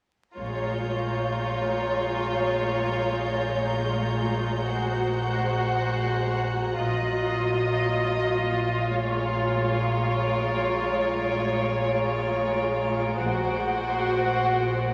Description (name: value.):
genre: cinematic, suspense film score.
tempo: 56 BPM.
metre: 4/4.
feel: straight.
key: Bb minor.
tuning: A4 = 440 Hz.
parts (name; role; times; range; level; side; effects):
rich studio violin section; melody; 0.4-14.9 s; C5 to Eb5; -32 LUFS; equal; none.
warm studio violin section; second line; 0.4-14.9 s; F4 to Gb4; -31 LUFS; equal; none.
warm studio viola section; accompaniment; 0.4-14.9 s; Gb3 to Ab3; -35 LUFS; equal; none.
rich studio double bass section; bass; 0.4-14.2 s; Bb1; -38 LUFS; equal; none.
warm studio cello section; bass; 0.4-14.9 s; Bb2; -33 LUFS; equal; none.
warm sub bass; drone; 0.4-14.9 s; Bb1; -40 LUFS; equal; none.
rich studio violin section; texture; 0.4-14.9 s; Bb5 to D7; -39 LUFS; equal; none.
room: wet scoring stage reverb, RT60 1.7 s.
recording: vinyl crackle.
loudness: -26 LUFS.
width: mono.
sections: 0.4-14.9 A section.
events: none.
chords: 0.4 Bbm7; 6.8 Ebmadd9/Bb; 8.9 Bbm7.